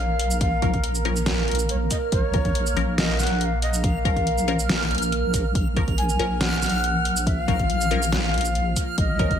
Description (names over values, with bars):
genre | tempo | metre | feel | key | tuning
deep dubstep | 140 BPM | 4/4 | half-time | Bb minor | A4 = 440 Hz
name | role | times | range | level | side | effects
breathy shakuhachi | melody | 0.0-9.4 s | Db5 to Ab5 | -28 LUFS | left 2 dB | dub echo
deep dark ambient pad | sustained chords | 0.0-9.4 s | F3 to Bb4 | -30 LUFS | right 4 dB | chorus, built-in reverb
deep soft wobble bass | bass | 0.0-9.4 s | Bb1 | -24 LUFS | equal | chorus
backwards swelling texture | texture | 0.0-9.4 s | F6 | -32 LUFS | right 3 dB | built-in reverb
dubstep drum kit | drums | 0.2-9.4 s | hi-hat, shaker, snare drum | -27 LUFS | equal | none
electronic kick drum | drums | 0.4-9.4 s | none | -24 LUFS | equal | none
filtered dub chord stab | stabs | 0.6-9.3 s | F3 to Bb4 | -30 LUFS | left 4 dB | phaser, dub echo
room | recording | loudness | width
light reverb | none | -20 LUFS | side -8 dB against mid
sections
0.0-9.4 A section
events
none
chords
0.0 Bbm